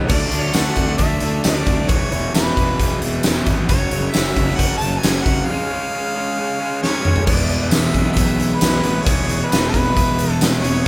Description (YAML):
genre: classic rock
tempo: 134 BPM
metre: 4/4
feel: straight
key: unclear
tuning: A4 = 440 Hz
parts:
  - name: distorted electric guitar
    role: riff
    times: 0.0-10.9 s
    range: E2 to D4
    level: -27 LUFS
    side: equal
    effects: distortion
  - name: overdriven semi-hollow guitar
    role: riff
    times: 0.0-10.9 s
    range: E2 to G#4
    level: -28 LUFS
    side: equal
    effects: none
  - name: fuzz picked electric bass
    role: bass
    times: 0.0-10.8 s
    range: E1 to D2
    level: -26 LUFS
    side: equal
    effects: overdrive
  - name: clear harmonica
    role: melody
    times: 0.1-10.9 s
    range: B4 to A5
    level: -26 LUFS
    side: equal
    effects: none
  - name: big rock drum kit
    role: drums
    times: 0.1-10.7 s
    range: crash cymbal, hi-hat, kick drum, snare drum, tambourine, toms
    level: -21 LUFS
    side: equal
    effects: none
room: light reverb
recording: band playing live in one room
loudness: -18 LUFS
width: mono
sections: 0.1-7.3 A section; 7.3-10.9 B section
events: break 5.5-7.3; drum fill 6.8-7.3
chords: 0.1 Dsus2; 1.9 E5; 3.7 F#5; 5.5 C#; 7.3 E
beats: | 0.10 0.54 0.99 1.44 | 1.89 2.34 2.79 3.24 | 3.68 4.13 4.58 5.03 | 5.48 5.92 6.37 6.82 | 7.27 7.72 8.16 8.61 | 9.06 9.51 9.96 10.40 | 10.85